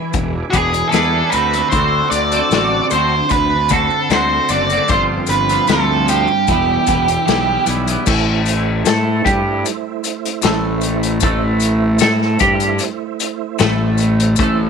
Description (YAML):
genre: psychedelic rock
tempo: 76 BPM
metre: 4/4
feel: straight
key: A minor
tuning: A4 = 440 Hz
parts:
  - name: tonewheel organ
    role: sustained chords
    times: 0.0-14.7 s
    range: A3 to E6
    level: -26 LUFS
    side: right 13 dB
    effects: slow rotary speaker, chorus vibrato
  - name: twelve-string electric guitar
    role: riff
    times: 0.0-14.7 s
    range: G2 to A4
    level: -18 LUFS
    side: equal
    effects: phaser, double-tracked left and right
  - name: fuzz fingered electric bass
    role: bass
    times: 0.1-14.7 s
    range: E1 to A2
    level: -21 LUFS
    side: left 1 dB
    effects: overdrive
  - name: vintage drum kit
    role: drums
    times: 0.1-14.6 s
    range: crash cymbal, hi-hat, kick drum, snare drum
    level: -20 LUFS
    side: left 5 dB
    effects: none
  - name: maracas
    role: percussion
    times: 0.1-14.6 s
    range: none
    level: -27 LUFS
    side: left 17 dB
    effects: none
  - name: octave-fuzz lead guitar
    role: melody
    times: 0.5-7.6 s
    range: G4 to D5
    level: -16 LUFS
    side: right 3 dB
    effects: distortion, slapback echo
room: light reverb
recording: 1960s-style stereo with parts hard left and right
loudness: -13 LUFS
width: side -6 dB against mid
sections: 0.0-8.1 A section; 8.1-14.7 B section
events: none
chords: 0.0 E7; 1.3 D7; 4.9 G7sus4; 6.5 Em; 8.1 Am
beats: 0.14 0.93 | 1.72 2.52 3.31 4.11 | 4.90 5.69 6.48 7.28 | 8.07 8.86 9.65 10.44 | 11.23 12.02 12.81 13.60 | 14.39